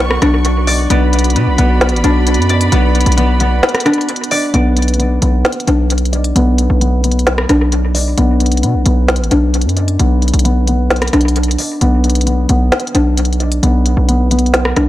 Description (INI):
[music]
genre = hip hop, trap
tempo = 132 BPM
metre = 4/4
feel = half-time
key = B minor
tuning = A4 = 440 Hz
[part]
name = dark studio string section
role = sustained chords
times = 0.0-4.5 s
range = B3 to C#6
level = -20 LUFS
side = right 2 dB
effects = none
[part]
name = concert harp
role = arpeggios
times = 0.0-14.9 s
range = B3 to D5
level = -16 LUFS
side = left 2 dB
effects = low-pass filter, dub echo
[part]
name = distorted 808-style bass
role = bass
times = 0.0-14.9 s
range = A1 to B2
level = -13 LUFS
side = equal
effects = distortion
[part]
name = organic electronic drum kit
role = drums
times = 0.1-14.9 s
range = hi-hat, rim click, snare drum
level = -17 LUFS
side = equal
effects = dub echo
[sound]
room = studio reverb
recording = echo-heavy mix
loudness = -11 LUFS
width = side -14 dB against mid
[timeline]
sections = 0.0-4.5 A section; 4.5-14.9 B section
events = break 3.6-4.5; filter sweep on harp 4.5-14.9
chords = 0.0 Bm